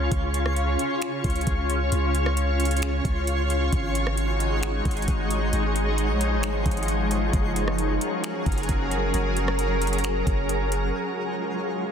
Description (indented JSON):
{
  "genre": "hip hop, atmospheric cloud-rap",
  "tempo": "133 BPM",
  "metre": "4/4",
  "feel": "half-time",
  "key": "Db major",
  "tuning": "A4 = 440 Hz",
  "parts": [
    { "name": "shimmering ambient pad", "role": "sustained chords", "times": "0.0-11.9 s", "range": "Db3 to Db5", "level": "-26 LUFS", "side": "equal", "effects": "chorus, built-in reverb, sidechain pumping" },
    { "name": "long sustained 808-style bass", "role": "bass", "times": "0.0-10.9 s", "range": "Gb1 to Db2", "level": "-26 LUFS", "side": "equal", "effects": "none" },
    { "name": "twinkling granular texture", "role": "texture", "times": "0.0-11.9 s", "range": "F4 to C6", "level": "-36 LUFS", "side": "left 3 dB", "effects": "built-in reverb" },
    { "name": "smooth R&B drum kit", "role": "drums", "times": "0.1-10.8 s", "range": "finger snaps, hi-hat, kick drum, rim click", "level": "-28 LUFS", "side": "equal", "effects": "soft clipping on snare" }
  ],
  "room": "little or no reverb",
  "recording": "dense, heavily limited modern master",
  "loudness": "-22 LUFS",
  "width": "side -8 dB against mid",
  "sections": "0.0-10.9 A section",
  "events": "none",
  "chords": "0.0 Dbmaj7; 3.7 Ab7; 7.3 Gbadd9; 10.9 Dbmaj7"
}